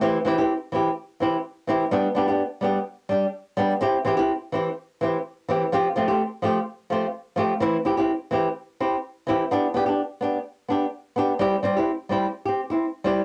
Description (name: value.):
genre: highlife.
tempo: 127 BPM.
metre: 4/4.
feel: swing 55% on 16ths.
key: C major.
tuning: A4 = 440 Hz.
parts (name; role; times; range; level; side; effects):
flamenco guitar; solo; 0.0-13.2 s; E3 to G4; -24 LUFS; equal; cassette tape.
room: moderate studio ambience, RT60 0.5 s.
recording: home recording on cassette.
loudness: -24 LUFS.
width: mono.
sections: 0.0-11.4 A section; 11.4-13.2 B section.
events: none.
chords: 0.0 C; 1.9 G; 3.8 C; 5.7 Fadd9; 7.6 C; 9.5 G; 11.4 C.